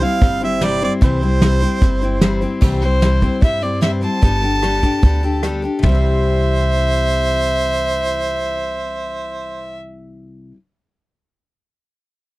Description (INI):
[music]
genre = honky-tonk and classic country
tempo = 150 BPM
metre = 4/4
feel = straight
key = C major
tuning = A4 = 440 Hz
[part]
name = warm harmonica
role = second line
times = 0.0-2.4, 5.8-9.8 s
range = C5 to F5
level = -22 LUFS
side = right 4 dB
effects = none
[part]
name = picked steel-string acoustic guitar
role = accompaniment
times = 0.0-10.6 s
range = C3 to C5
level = -22 LUFS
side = left 3 dB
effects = none
[part]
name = upright bass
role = bass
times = 0.0-10.5 s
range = G1 to G2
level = -20 LUFS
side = equal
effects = none
[part]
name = soft brush drum kit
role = drums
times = 0.0-5.9 s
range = crash cymbal, hi-hat, kick drum, rim click, snare drum, toms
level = -14 LUFS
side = equal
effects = none
[part]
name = clear fiddle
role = melody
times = 2.8-9.8 s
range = C5 to A5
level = -21 LUFS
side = equal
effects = none
[sound]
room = light reverb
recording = dry, close 1970s-style studio recording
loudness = -14 LUFS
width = side -19 dB against mid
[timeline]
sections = 0.0-2.6 A section; 2.6-5.8 B section; 5.8-9.0 C section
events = harmonica solo 0.0-2.6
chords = 0.0 C; 4.2 Gadd9; 5.8 C